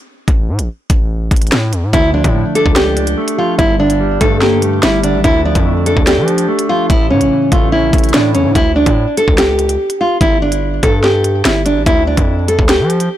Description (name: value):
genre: hip hop, drill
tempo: 145 BPM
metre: 4/4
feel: half-time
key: D harmonic minor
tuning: A4 = 440 Hz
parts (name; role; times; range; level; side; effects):
- distorted 808-style bass; bass; 0.3-13.1 s; G1 to F3; -16 LUFS; equal; distortion
- drill drum kit; drums; 0.3-13.1 s; hi-hat, kick drum, snare drum; -15 LUFS; equal; none
- nylon-string guitar; melody; 1.9-13.2 s; C#4 to A4; -14 LUFS; equal; low-pass filter, ping-pong delay
- mellow electric guitar; accompaniment; 1.9-8.6 s; G2 to D5; -18 LUFS; equal; low-pass filter
room: little or no reverb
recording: blown-out, overdriven recording, overdrive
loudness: -10 LUFS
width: side -12 dB against mid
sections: 0.0-13.2 A section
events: break 0.0-1.9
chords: 0.3 A5; 1.9 Dm; 3.6 Gmadd9; 5.2 Dm; 6.9 A; 8.6 D5; 10.2 G5; 11.9 Dm